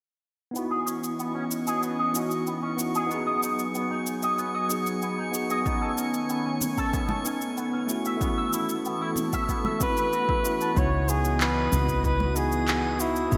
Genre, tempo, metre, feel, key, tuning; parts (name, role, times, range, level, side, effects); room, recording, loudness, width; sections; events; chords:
sunset chillout; 94 BPM; 4/4; straight; C# minor; A4 = 439 Hz
tine electric piano; accompaniment; 0.5-13.4 s; A3 to G#5; -33 LUFS; equal; low-pass filter, delay
lush unison pad; sustained chords; 0.9-13.4 s; B2 to G#5; -35 LUFS; equal; chorus
electric guitar with an envelope filter; arpeggios; 0.6-10.8 s; B3 to E5; -33 LUFS; equal; ensemble chorus, low-pass filter, delay
electronic shaker and handclaps; drums; 0.6-13.4 s; -34 LUFS; equal
drifting glass-harmonics texture; texture; 1.0-13.4 s; C#6 to D#6; -41 LUFS; equal; chorus, built-in reverb
electronic kick drum; drums; 5.7-13.4 s; -32 LUFS; equal; overdrive
congas; percussion; 6.6-12.3 s; -38 LUFS; equal
warm flugelhorn; melody; 9.8-13.4 s; E4 to C#5; -29 LUFS; equal; delay
woody fretless electric bass; bass; 10.8-13.4 s; G#1 to C#2; -29 LUFS; equal; ensemble chorus
wet lush hall reverb, RT60 2.8 s; bright 1980s-style digital production; -27 LUFS; mono
0.6-10.8 A section; 10.8-13.4 B section
0.6 C#m11; 3.1 G#m7; 5.7 Amaj9#11; 7.9 B7sus4; 10.8 C#m11